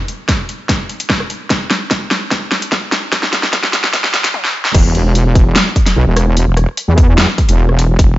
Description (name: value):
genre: heavy wobble dubstep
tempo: 148 BPM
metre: 4/4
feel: half-time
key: unclear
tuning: A4 = 441 Hz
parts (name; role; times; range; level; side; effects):
- dubstep drum kit; drums; 0.1-8.1 s; crash cymbal, hi-hat, rim click, snare drum, toms; -15 LUFS; equal; studio reverb
- electronic kick drum; drums; 0.3-8.1 s; none; -13 LUFS; equal; studio reverb
- wobble bass; bass; 4.7-8.2 s; E1 to E2; -11 LUFS; equal; chorus, overdrive
room: light reverb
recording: high-pass filter, nothing above 7.6 kHz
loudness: -11 LUFS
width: side -16 dB against mid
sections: 0.0-4.7 A section; 4.7-8.2 B section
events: build-up 0.0-4.7; drum fill 0.0-4.3, 4.3-4.7; filter sweep 0.0-4.7; stop 4.3-4.7; drop 4.7-8.2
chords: none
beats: 0.29 0.69 1.10 | 1.50 1.91 2.31 2.72 | 3.12 3.53 3.94 4.34 | 4.75 5.15 5.56 5.96 | 6.37 6.77 7.18 7.58 | 7.99